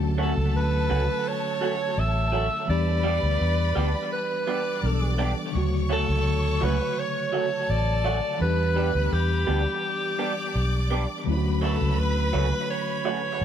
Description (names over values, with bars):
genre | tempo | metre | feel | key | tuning
reggae | 84 BPM | 4/4 | straight | D major | A4 = 441 Hz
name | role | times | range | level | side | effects
clear studio violin section | second line | 0.0-13.4 s | A4 to D6 | -34 LUFS | left 1 dB | tape echo
mellow tine electric piano | accompaniment | 0.0-13.4 s | C#3 to A4 | -31 LUFS | left 2 dB | medium stereo tremolo
vintage muted fingered electric bass | bass | 0.0-13.4 s | A1 to E2 | -24 LUFS | equal | none
breathy alto saxophone | melody | 0.2-13.4 s | G4 to E5 | -28 LUFS | right 1 dB | tape echo
electric guitar through a small old amp | stabs | 0.2-13.2 s | F#3 to G4 | -32 LUFS | right 5 dB | phaser, tape echo
room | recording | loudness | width
light reverb | none | -22 LUFS | side -9 dB against mid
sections
0.0-13.4 A section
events
none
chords
0.0 Dmaj7; 2.7 Em7; 5.5 Dmaj7; 8.4 Em7; 11.3 Dmaj7